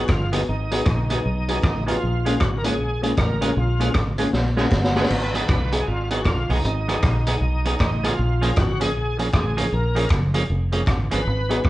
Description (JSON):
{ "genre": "ska", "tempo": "156 BPM", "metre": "4/4", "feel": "swing 62% on 8ths", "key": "G# dorian", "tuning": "A4 = 444 Hz", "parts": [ { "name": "bright tonewheel organ", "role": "melody", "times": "0.0-11.7 s", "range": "D#4 to B4", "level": "-28 LUFS", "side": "equal", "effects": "overdrive, chorus vibrato, slow rotary speaker" }, { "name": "semi-hollow electric guitar", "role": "accompaniment", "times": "0.0-11.6 s", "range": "E#3 to G#4", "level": "-27 LUFS", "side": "right 2 dB", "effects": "none" }, { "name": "dark upright piano", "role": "stabs", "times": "0.0-5.0, 11.5-11.6 s", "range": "A#3 to G#4", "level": "-28 LUFS", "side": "left 4 dB", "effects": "analog delay" }, { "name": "fingered electric bass", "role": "bass", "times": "0.0-11.7 s", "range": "E#1 to B1", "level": "-23 LUFS", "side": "equal", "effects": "none" }, { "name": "street-band drum kit", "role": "drums", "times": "0.1-11.7 s", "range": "crash cymbal, hi-hat, kick drum, rim click, snare drum", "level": "-23 LUFS", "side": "equal", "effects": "none" }, { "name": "group handclap", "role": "percussion", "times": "0.1-11.7 s", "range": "none", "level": "-44 LUFS", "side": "left 1 dB", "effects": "none" } ], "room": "moderate large studio reverb, RT60 1.2 s", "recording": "band playing live in one room, cassette tape, nothing above 10.6 kHz", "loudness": "-19 LUFS", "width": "side -16 dB against mid", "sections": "0.0-5.1 A section; 5.1-11.7 A section", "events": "drum fill 4.3-5.1", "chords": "0.0 G#m7; 2.0 A#m7; 5.1 G#m7; 8.2 A#m7" }